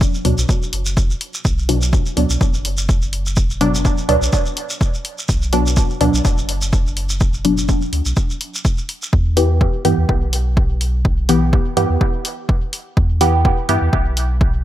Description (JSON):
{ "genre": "dub techno", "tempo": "125 BPM", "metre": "4/4", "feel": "swing 55% on 16ths", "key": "E minor", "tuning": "A4 = 438 Hz", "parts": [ { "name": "filtered dub chord stab", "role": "stabs", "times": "0.0-13.9 s", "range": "B2 to G4", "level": "-19 LUFS", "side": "equal", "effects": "chorus, phaser, sidechain pumping, dub echo" }, { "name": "pure sine sub bass", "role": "bass", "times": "0.0-14.6 s", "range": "F#1 to G2", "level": "-19 LUFS", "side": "equal", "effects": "sidechain pumping" }, { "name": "electronic kick drum", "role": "drums", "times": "0.0-14.5 s", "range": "none", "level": "-16 LUFS", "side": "equal", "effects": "none" }, { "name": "shekere", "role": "percussion", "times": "0.0-9.1 s", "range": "none", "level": "-26 LUFS", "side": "right 1 dB", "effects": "none" }, { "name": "electronic hi-hat", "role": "drums", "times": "0.2-14.3 s", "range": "none", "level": "-24 LUFS", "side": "left 2 dB", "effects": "none" } ], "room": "light reverb, digital ambience", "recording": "bright 1980s-style digital production", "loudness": "-15 LUFS", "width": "side -13 dB against mid", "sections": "0.0-9.1 A section; 9.1-14.6 A section", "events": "filter sweep on synth stab 0.0-9.1, 9.1-14.6", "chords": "0.0 Bm; 9.1 Em" }